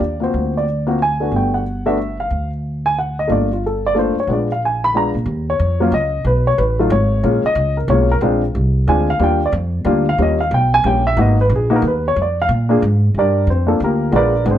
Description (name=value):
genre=jazz piano trio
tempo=183 BPM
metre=3/4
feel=swing 64% on 8ths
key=G minor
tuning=A4 = 440 Hz
part: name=dark baby grand piano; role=melody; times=0.0-14.6 s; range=Gb3 to Cb6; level=-16 LUFS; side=left 1 dB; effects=none
part: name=upright bass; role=bass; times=0.0-14.6 s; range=G1 to Bb2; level=-18 LUFS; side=right 1 dB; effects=none
room=light reverb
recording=none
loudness=-14 LUFS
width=side -11 dB against mid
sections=0.0-5.3 A section; 5.3-13.1 B section; 13.1-14.6 C section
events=grand piano solo 13.1-14.6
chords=0.3 D7alt; 1.3 Gmaj7; 2.3 N.C.; 3.3 Gm7; 4.3 Bb7b9; 5.3 Eb7sus2; 6.2 B7(no3); 7.2 Bbm7; 8.2 Bb9; 9.2 Ebmaj9; 10.2 Eb7; 11.2 Abm9; 12.2 Bb7; 13.1 Gm7